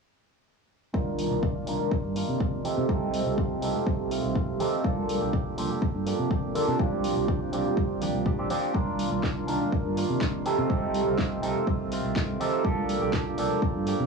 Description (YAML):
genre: filtered disco house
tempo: 123 BPM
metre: 4/4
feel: straight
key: C dorian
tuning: A4 = 440 Hz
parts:
  - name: barky tine electric piano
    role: accompaniment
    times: 0.9-14.1 s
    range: Eb3 to Bb4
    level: -28 LUFS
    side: right 2 dB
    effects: phaser, vintage 12-bit sampler grit, sidechain pumping, low-pass filter, cassette tape
  - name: direct-recorded clean electric guitar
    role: riff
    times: 0.9-14.1 s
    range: Eb3 to G4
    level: -35 LUFS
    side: right 1 dB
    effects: sidechain pumping, low-pass filter, cassette tape
  - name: fingered electric bass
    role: bass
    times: 0.9-14.1 s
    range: Bb1 to C3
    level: -32 LUFS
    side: right 1 dB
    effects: sidechain pumping, low-pass filter
  - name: electronic kick drum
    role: drums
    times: 0.9-13.7 s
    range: none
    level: -28 LUFS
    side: equal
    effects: overdrive, small room reverb, cassette tape
  - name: tube shaker and congas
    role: percussion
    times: 0.9-14.1 s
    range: none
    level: -38 LUFS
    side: right 9 dB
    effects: sidechain pumping on perc, low-pass filter on perc
  - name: house drum kit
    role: drums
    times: 1.2-14.0 s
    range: hi-hat, snare drum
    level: -37 LUFS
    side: equal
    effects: overdrive, sidechain pumping on hats, small room reverb, cassette tape
room: light reverb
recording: home recording on cassette, small room ambience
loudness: -25 LUFS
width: side -4 dB against mid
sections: 0.9-14.1 A section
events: filter sweep 0.9-14.1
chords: 0.9 Cm11; 2.7 F7/C; 4.8 Gm7/C; 6.8 Bb6/C; 8.7 Cm11; 10.5 F7/C; 12.7 Gm7/C